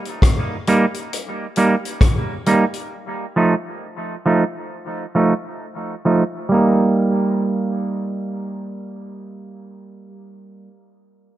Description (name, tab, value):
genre	dub reggae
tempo	67 BPM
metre	4/4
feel	swing 62% on 16ths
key	unclear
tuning	A4 = 441 Hz
part	vintage drum kit	drums	0.1-2.9 s	hi-hat, kick drum, rim click	-18 LUFS	left 1 dB	none
part	semi-hollow electric guitar	accompaniment	0.7-10.7 s	F3 to Eb4	-19 LUFS	right 2 dB	low-pass filter, dub echo
room	light reverb, small room ambience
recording	echo-heavy mix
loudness	-17 LUFS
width	side -13 dB against mid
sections	0.0-6.5 A section; 6.5-10.1 B section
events	filter sweep on clean electric guitar 0.0-6.5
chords	0.0 Gm; 2.9 F7; 6.5 Eb/G